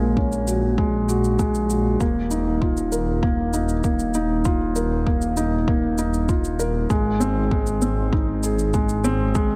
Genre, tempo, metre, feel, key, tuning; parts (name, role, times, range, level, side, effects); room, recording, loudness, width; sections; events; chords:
piano and strings electronica; 98 BPM; 4/4; straight; A4 = 443 Hz
felt-muted upright piano; riff; 0.0-9.6 s; Ab3 to Bb4; -24 LUFS; equal; tape echo
dark detuned saw bass; bass; 0.0-9.6 s; Eb1 to Bb1; -27 LUFS; equal; sidechain pumping
electronic kick drum; drums; 0.2-9.5 s; -25 LUFS; equal
shaker; drums; 0.3-9.5 s; -36 LUFS; equal
moderate lush hall reverb, RT60 2.5 s; dark, warm production; -22 LUFS; mono
0.0-9.6 A section
0.0 Gbadd9/Bb; 2.0 Ebsus2; 6.9 Ab